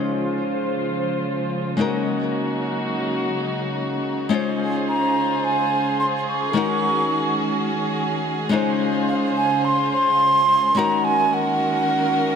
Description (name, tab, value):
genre	sunset chillout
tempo	107 BPM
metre	4/4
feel	swing 53% on 16ths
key	Db major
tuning	A4 = 445 Hz
part	nylon-string guitar	accompaniment	0.0-12.4 s	Eb3 to C5	-24 LUFS	moving between left 5 dB and right 7 dB	auto-pan, low-pass filter, ping-pong delay
part	warm chamber string section	sustained chords	0.0-12.4 s	Db3 to C5	-24 LUFS	equal	low-pass filter
part	electronic shaker and hi-hat	drums	0.1-12.3 s	none	barely audible	none	none
part	baroque flute	melody	4.9-12.4 s	F5 to Db6	-20 LUFS	right 1 dB	ping-pong delay
room	wet plate reverb, RT60 3.0 s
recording	bright 1980s-style digital production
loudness	-19 LUFS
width	side -7 dB against mid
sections	0.0-12.4 A section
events	none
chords	0.0 Dbmaj7; 1.8 Gb6; 4.3 Dbmaj7; 6.6 Ab7sus4/Eb; 8.5 Dbmaj7; 10.8 Gb6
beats	0.39 0.95 1.51 | 2.07 2.63 3.19 3.75 | 4.31 4.87 5.43 6.00 | 6.56 7.12 7.68 8.24 | 8.80 9.36 9.92 10.48 | 11.04 11.60 12.16